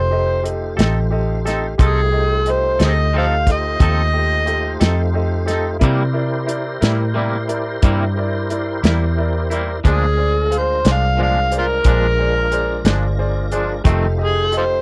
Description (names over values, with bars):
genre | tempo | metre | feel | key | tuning
slow blues | 60 BPM (dotted quarters) | 12/8 | straight | F mixolydian | A4 = 440 Hz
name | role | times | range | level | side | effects
overdriven harmonica | melody | 0.0-14.8 s | F4 to F5 | -20 LUFS | equal | none
clear upright piano | accompaniment | 0.0-14.8 s | E4 to F5 | -27 LUFS | equal | none
tonewheel organ | sustained chords | 0.0-14.8 s | Ab3 to C5 | -31 LUFS | equal | chorus vibrato, slow rotary speaker
vintage muted fingered electric bass | bass | 0.0-14.8 s | F1 to C3 | -22 LUFS | equal | none
warm soul drum kit | drums | 0.5-14.7 s | hi-hat, kick drum, snare drum | -18 LUFS | equal | none
twangy electric guitar | accompaniment | 0.8-14.1 s | F2 to A4 | -26 LUFS | equal | tremolo
room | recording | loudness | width
little or no reverb | dry, close 1970s-style studio recording | -18 LUFS | mono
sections
0.0-14.8 A section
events
none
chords
0.0 F7; 5.8 C7; 9.8 Bb7; 13.9 F7